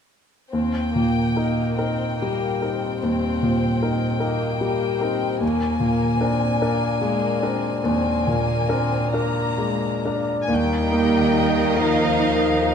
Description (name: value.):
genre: classical, romantic movement for piano and orchestra.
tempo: 42-51 BPM (dotted quarters).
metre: 12/8.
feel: rubato.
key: Eb major.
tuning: A4 = 440 Hz.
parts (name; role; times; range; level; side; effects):
clear concert grand piano; melody; 0.5-12.7 s; Eb2 to Bb4; -21 LUFS; equal; none.
rich chamber violin section; second line; 0.5-12.7 s; Bb3 to Bb5; -27 LUFS; left 4 dB; none.
rich chamber violin section; melody; 10.4-12.7 s; F5 to Ab5; -26 LUFS; left 2 dB; none.
bright clarinet; second line; 10.5-12.7 s; Eb4; -27 LUFS; left 1 dB; none.
mellow bassoon; accompaniment; 10.5-12.7 s; Bb3; -26 LUFS; right 2 dB; none.
warm studio viola section; accompaniment; 10.5-12.7 s; Bb3 to Eb4; -27 LUFS; right 2 dB; none.
mellow French horn section; sustained chords; 10.5-12.7 s; F3 to G3; -27 LUFS; left 2 dB; none.
rich chamber cello section; bass; 10.5-12.7 s; Eb3; -28 LUFS; right 5 dB; none.
rich symphonic double bass section; bass; 10.5-12.7 s; Eb2; -28 LUFS; right 6 dB; none.
room: wet concert hall reverb, RT60 2.2 s.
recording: minimal, uncompressed stereo recording.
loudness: -19 LUFS.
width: side -7 dB against mid.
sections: 0.5-10.5 A section; 10.5-12.7 B section.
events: none.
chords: 0.5 Eb; 5.4 Bb7/Eb; 10.5 Eb.